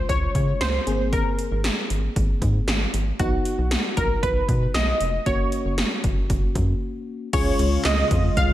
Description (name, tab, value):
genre	synth-pop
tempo	116 BPM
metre	4/4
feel	straight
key	Db major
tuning	A4 = 440 Hz
part	funky polysynth comp	melody	0.0-8.5 s	Gb4 to F5	-26 LUFS	right 1 dB	chorus, tremolo, digital delay
part	FM electric piano	accompaniment	0.0-8.5 s	Ab3 to Ab4	-31 LUFS	left 2 dB	chorus
part	rubbery square bass	bass	0.1-8.5 s	F1 to Db3	-24 LUFS	equal	none
part	80s electronic pad drums	drums	0.1-8.5 s	crash cymbal, handclaps, hi-hat, kick drum, snare drum	-24 LUFS	equal	gated reverb
part	chorused pulse-width pad	sustained chords	7.3-8.5 s	Db3 to F4	-27 LUFS	right 1 dB	none
room	digital ambience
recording	none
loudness	-20 LUFS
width	side -14 dB against mid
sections	0.0-7.3 A section; 7.3-8.5 B section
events	break 6.8-7.3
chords	0.0 Db; 0.9 Abadd9; 3.2 Cb; 5.3 Gb; 7.3 Db